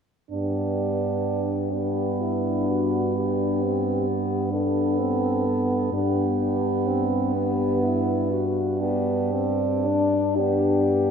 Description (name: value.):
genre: classical, lyrical piece for horn quartet.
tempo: 42 BPM (dotted quarters).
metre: 12/8.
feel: rubato.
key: G major.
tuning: A4 = 441 Hz.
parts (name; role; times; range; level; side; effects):
mellow French horn; melody; 0.3-11.1 s; D4 to A4; -28 LUFS; left 5 dB; none.
warm French horn; second line; 0.3-11.1 s; B3 to D4; -27 LUFS; right 6 dB; none.
mellow French horn; accompaniment; 0.3-11.1 s; B3 to D4; -28 LUFS; left 5 dB; none.
mellow French horn; bass; 0.3-11.1 s; G2; -27 LUFS; right 2 dB; none.
room: wet church reverb, RT60 3.2 s.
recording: none.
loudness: -21 LUFS.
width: side -7 dB against mid.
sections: 0.3-11.1 A section.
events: none.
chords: 0.3 G.